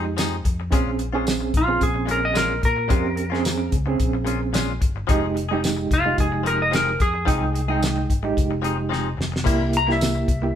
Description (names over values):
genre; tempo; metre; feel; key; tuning
straight-eighth soul blues; 110 BPM; 4/4; swing 55% on 16ths; F minor; A4 = 440 Hz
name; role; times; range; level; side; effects
overdriven reed electric piano; accompaniment; 0.0-10.6 s; Ab3 to G5; -25 LUFS; right 4 dB; fast tremolo
direct-recorded clean electric guitar; stabs; 0.0-10.5 s; Bb2 to Ab4; -29 LUFS; left 7 dB; none
fingered electric bass; bass; 0.0-10.5 s; F1 to Bb2; -26 LUFS; left 1 dB; none
warm soul drum kit; drums; 0.2-10.4 s; crash cymbal, hi-hat, kick drum, snare drum, tambourine; -23 LUFS; left 1 dB; none
clean lap steel guitar; melody; 1.6-10.6 s; F4 to Bb5; -23 LUFS; left 1 dB; none
room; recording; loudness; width
moderate large studio reverb, RT60 0.9 s; band playing live in one room; -19 LUFS; side -9 dB against mid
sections
0.0-10.6 A section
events
drum fill 8.9-9.5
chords
0.0 Fm7; 0.7 Bbm7; 5.1 Fm7; 9.5 C7